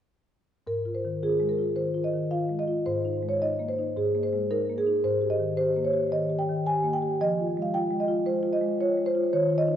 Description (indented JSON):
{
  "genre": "classical, contemporary piece for solo marimba",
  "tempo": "111 BPM",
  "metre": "4/4",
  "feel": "rubato",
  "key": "Ab major",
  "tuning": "A4 = 439 Hz",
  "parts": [
    { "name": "marimba with soft mallets", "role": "solo", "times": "0.7-9.8 s", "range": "Ab2 to Ab5", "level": "-24 LUFS", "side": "equal", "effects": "none" }
  ],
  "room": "wet church reverb, RT60 3.2 s",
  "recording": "worn, warbling old tape, cassette tape, warbly pitch drift",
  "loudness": "-24 LUFS",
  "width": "side -10 dB against mid",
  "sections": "0.7-9.8 A section",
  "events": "none",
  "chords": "0.7 Ab5; 2.9 Bb7sus4/Ab; 5.1 Absus2; 7.2 Fm"
}